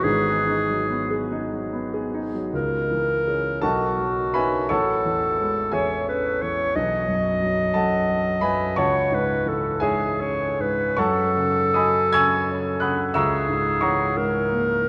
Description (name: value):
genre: classical, impressionist duo for clarinet and grand piano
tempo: 46-61 BPM (dotted quarters)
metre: 6/8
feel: rubato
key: C# minor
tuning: A4 = 442 Hz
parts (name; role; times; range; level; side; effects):
- clear clarinet; melody; 0.0-14.9 s; F#4 to D#5; -25 LUFS; equal; none
- warm concert grand piano; accompaniment; 0.0-14.9 s; G#1 to G#6; -26 LUFS; equal; none
room: wet cathedral reverb, RT60 5.2 s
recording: in a vast, echoing space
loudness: -23 LUFS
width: mono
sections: 0.0-2.5 A section; 2.5-14.9 B section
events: none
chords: 0.0 G#m7; 2.5 C#m6; 3.6 B9; 4.7 Amaj7; 6.8 B9sus4; 8.8 C#m; 11.0 F#m6; 13.2 C#m6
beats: | 0.04 1.31 | 2.53 3.62 | 4.70 5.74 | 6.75 7.76 | 8.78 9.82 | 10.98 12.14 | 13.16 14.17